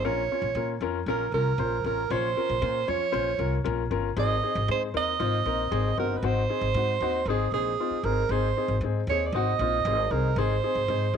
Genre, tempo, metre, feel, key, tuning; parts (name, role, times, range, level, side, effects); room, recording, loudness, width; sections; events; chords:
uptempo 1960s-style soul; 116 BPM; 4/4; straight; A4 = 440 Hz
breathy alto saxophone; melody; 0.0-11.1 s; Ab4 to Eb5; -27 LUFS; right 8 dB
warm upright piano; accompaniment; 0.0-11.2 s; C4 to Db5; -30 LUFS; left 11 dB
upright bass; bass; 0.0-11.2 s; G1 to Bb2; -29 LUFS; left 1 dB
moderate spring reverb, RT60 1.5 s, small room ambience; 1960s-style stereo with parts hard left and right; -24 LUFS; side -7 dB against mid
0.0-11.2 A section
0.0 Bbm; 4.2 Ab